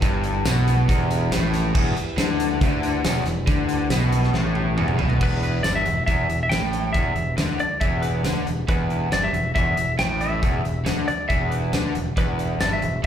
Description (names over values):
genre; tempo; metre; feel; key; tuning
classic rock; 138 BPM; 4/4; straight; E minor; A4 = 440 Hz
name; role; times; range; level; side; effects
mellow tonewheel organ; sustained chords; 0.0-13.1 s; E4 to E5; -36 LUFS; right 1 dB; slow rotary speaker
overdriven electric guitar; riff; 0.0-13.1 s; E2 to D3; -26 LUFS; right 6 dB; slapback echo
raw garage guitar; riff; 0.0-13.1 s; E2 to D3; -29 LUFS; left 13 dB; overdrive, slapback echo
growling fingered electric bass; bass; 0.0-13.1 s; E1 to D2; -25 LUFS; left 1 dB; overdrive
huge arena drum kit; drums; 0.0-13.1 s; crash cymbal, hi-hat, kick drum, snare drum, tambourine, toms; -25 LUFS; equal; none
clean lap steel guitar; melody; 5.2-13.0 s; B4 to G5; -25 LUFS; equal; slapback echo
room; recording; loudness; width
studio ambience; live gig heard through the venue's PA, club reverb; -19 LUFS; side -9 dB against mid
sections
0.0-5.2 A section; 5.2-13.1 B section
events
drum fill 4.3-5.2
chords
0.0 Em